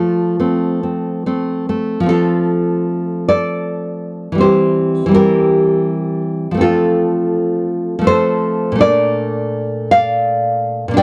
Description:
romantic piece for solo classical guitar; 70-89 BPM; 3/4; rubato; F major; A4 = 439 Hz
nylon-string guitar; solo; 0.0-11.0 s; Bb2 to G5; -16 LUFS; equal
little or no reverb; dry, close 1970s-style studio recording; -16 LUFS; mono
0.0-2.1 A section; 2.1-11.0 B section
0.0 F; 4.4 C7/E; 6.6 F; 8.8 Bbmaj7
0.40 1.26 | 2.08 2.87 3.67 | 4.41 5.14 5.89 | 6.61 7.33 8.07 | 8.81 9.54 10.27 | 10.97

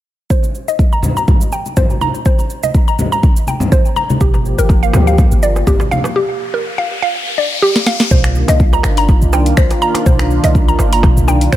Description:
afro house; 123 BPM; 4/4; swing 55% on 16ths; A4 = 440 Hz
mallet-like synth pluck; arpeggios; 0.3-11.6 s; G4 to Bb5; -18 LUFS; equal; chorus, sidechain pumping, dub echo
afro-pop drum kit; drums; 0.3-11.6 s; finger snaps, hi-hat, shaker, snare drum; -21 LUFS; equal; studio reverb
electronic kick drum; drums; 0.3-11.6 s; -12 LUFS; equal; studio reverb
congas; percussion; 0.4-6.0 s; -20 LUFS; left 1 dB
warm analog pad; sustained chords; 4.2-11.6 s; Eb3 to G4; -19 LUFS; equal; chorus, sidechain pumping
warm 808-style bass; bass; 4.2-11.6 s; G1 to D2; -15 LUFS; equal; sidechain pumping
darbuka; percussion; 4.2-11.4 s; -22 LUFS; right 2 dB
riser; sound effects; 5.4-8.1 s; -23 LUFS; left 4 dB
little or no reverb; -11 LUFS; side -13 dB against mid
0.3-8.1 A section; 8.1-11.6 B section
filter sweep on synth arpeggio sound 0.3-8.1; riser 5.4-8.1; break 6.2-8.1; drum fill 7.7-8.1
0.3 Cm7; 4.2 Gm7; 8.1 Cm11
| 0.31 0.79 1.28 1.77 | 2.26 2.75 3.23 3.72 | 4.21 4.70 5.18 5.67 | 6.16 6.65 7.13 7.62 | 8.11 8.60 9.09 9.57 | 10.06 10.55 11.04 11.53

